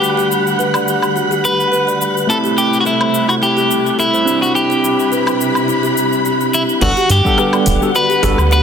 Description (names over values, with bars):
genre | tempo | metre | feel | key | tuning
sunset chillout | 106 BPM | 4/4 | swing 54% on 16ths | G major | A4 = 440 Hz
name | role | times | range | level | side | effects
electric guitar at the edge of break-up | melody | 0.0-8.6 s | E4 to B4 | -16 LUFS | left 1 dB | ping-pong delay
overdriven tine electric piano | accompaniment | 0.0-8.4 s | G3 to B5 | -19 LUFS | right 1 dB | auto-pan, digital delay
dark symphonic string section | sustained chords | 0.0-8.6 s | C3 to B5 | -21 LUFS | equal | none
kalimba | arpeggios | 0.0-8.6 s | E4 to D5 | -21 LUFS | left 4 dB | digital delay
deep house drum kit | drums | 0.0-8.6 s | cabasa, crash cymbal, hi-hat, rim click, woodblock | -23 LUFS | left 2 dB | overdrive, studio ambience
wind-like tuned noise texture | texture | 0.0-6.8 s | F#6 | -26 LUFS | right 6 dB | built-in reverb
round analog bass | bass | 6.8-8.6 s | D1 to G2 | -14 LUFS | right 1 dB | none
electronic kick drum | drums | 6.8-8.4 s | none | -20 LUFS | right 1 dB | studio ambience
room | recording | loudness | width
wet lush hall reverb, RT60 1.7 s, digital ambience | dense, heavily limited modern master | -12 LUFS | side -7 dB against mid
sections
0.0-6.8 A section; 6.8-8.6 B section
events
none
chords
0.0 Gmaj7; 2.3 Am7; 4.3 Cmaj7; 6.8 Gmaj7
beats
| 0.02 0.59 1.15 1.72 | 2.29 2.85 3.42 3.98 | 4.55 5.12 5.68 6.25 | 6.82 7.38 7.95 8.51